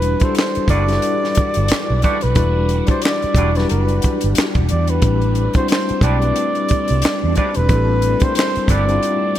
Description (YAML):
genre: R&B, neo-soul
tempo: 90 BPM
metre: 4/4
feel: swing 57% on 16ths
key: E minor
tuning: A4 = 440 Hz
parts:
  - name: mellow flugelhorn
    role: melody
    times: 0.0-9.4 s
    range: B4 to D5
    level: -21 LUFS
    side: right 1 dB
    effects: none
  - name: tine electric piano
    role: accompaniment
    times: 0.0-9.4 s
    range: F#3 to D5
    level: -22 LUFS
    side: left 6 dB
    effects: medium tremolo
  - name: phased string machine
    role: sustained chords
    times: 0.0-9.4 s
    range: E3 to F#4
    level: -27 LUFS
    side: equal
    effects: ensemble chorus, phaser
  - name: vintage muted fingered electric bass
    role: bass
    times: 0.0-9.0 s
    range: E1 to E2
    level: -18 LUFS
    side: right 1 dB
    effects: none
  - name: compact cocktail drum kit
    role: drums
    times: 0.0-9.4 s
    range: handclaps, hi-hat, kick drum, snare drum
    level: -19 LUFS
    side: equal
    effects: none
  - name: electric guitar through a small old amp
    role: second line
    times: 0.7-8.8 s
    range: G3 to B4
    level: -28 LUFS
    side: right 4 dB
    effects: wide subtle chorus, digital delay
room: light reverb, small room ambience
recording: bright 1980s-style digital production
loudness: -14 LUFS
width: side -12 dB against mid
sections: 0.0-9.4 A section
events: none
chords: 0.0 Em9; 5.0 Am11